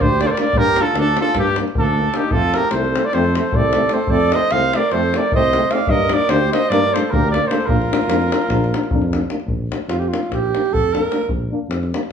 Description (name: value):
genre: balkan folk, Balkan brass band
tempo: 302 BPM (eighths)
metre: 9/8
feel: straight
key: Bb major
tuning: A4 = 440 Hz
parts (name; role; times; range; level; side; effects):
- mellow trumpet; melody; 0.0-9.3 s; G4 to F5; -19 LUFS; right 1 dB; none
- warm alto saxophone; second line; 0.0-11.3 s; D4 to D5; -23 LUFS; right 4 dB; none
- mellow euphonium; accompaniment; 0.0-12.0 s; C4 to D4; -25 LUFS; left 5 dB; none
- warm trombone; accompaniment; 0.0-12.0 s; A3 to Bb3; -26 LUFS; right 4 dB; none
- mellow tuba; bass; 0.0-11.9 s; Bb1 to G2; -22 LUFS; equal; none
- davul; percussion; 0.0-12.1 s; none; -23 LUFS; left 2 dB; none
room: wet large studio reverb, RT60 0.9 s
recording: band playing live in one room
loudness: -15 LUFS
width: side -7 dB against mid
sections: 0.0-9.5 A section; 9.5-12.1 B section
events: alto saxophone solo 9.5-12.1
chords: 0.0 Gm; 2.3 F; 5.9 Gm; 7.7 Bb